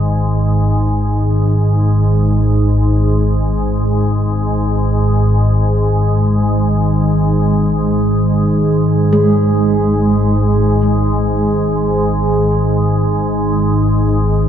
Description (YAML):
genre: dark ambient drone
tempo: free time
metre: none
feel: none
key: unclear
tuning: A4 = 440 Hz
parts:
  - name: organ-like drone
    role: drone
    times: 0.0-14.5 s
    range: G#1 to G#2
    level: -12 LUFS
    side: equal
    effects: ensemble chorus, built-in reverb
  - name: bronze singing bowl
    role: texture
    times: 0.0-14.5 s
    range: D#4 to G#4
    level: -26 LUFS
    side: left 1 dB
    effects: none
  - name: gamelan-type bronze metallophone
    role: arpeggios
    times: 9.1-14.5 s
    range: G#3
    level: -20 LUFS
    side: right 3 dB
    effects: diffuse ambient delay
room: wet cathedral reverb, RT60 6.6 s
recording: dark, warm production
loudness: -12 LUFS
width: side -9 dB against mid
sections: 0.0-14.5 A section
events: none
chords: 0.0 G#5